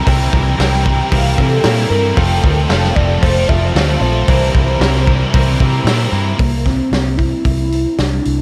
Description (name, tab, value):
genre	rock, shoegaze and dream pop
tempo	114 BPM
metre	4/4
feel	straight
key	C mixolydian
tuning	A4 = 440 Hz
part	warm velvety synth lead	melody	0.0-8.4 s	Bb3 to G5	-22 LUFS	equal	chorus, tape echo
part	biting overdriven guitar	riff	0.0-6.4 s	C3 to Bb4	-26 LUFS	equal	ensemble chorus
part	biting overdriven guitar	riff	0.0-6.4 s	C3 to Bb4	-26 LUFS	equal	reverse reverb
part	distorted electric guitar	riff	0.0-6.4 s	C3 to F4	-25 LUFS	equal	distortion
part	vintage muted fingered electric bass	bass	0.1-8.4 s	F1 to C3	-18 LUFS	equal	none
part	loose indie drum kit	drums	0.1-8.4 s	hi-hat, kick drum, snare drum	-19 LUFS	equal	none
room	moderate huge ambient reverb, RT60 9.0 s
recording	dreamy mix soaked in reverb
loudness	-14 LUFS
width	mono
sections	0.0-6.4 A section; 6.4-8.4 B section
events	none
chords	0.0 C5; 2.2 Fadd9; 4.3 C7; 6.4 C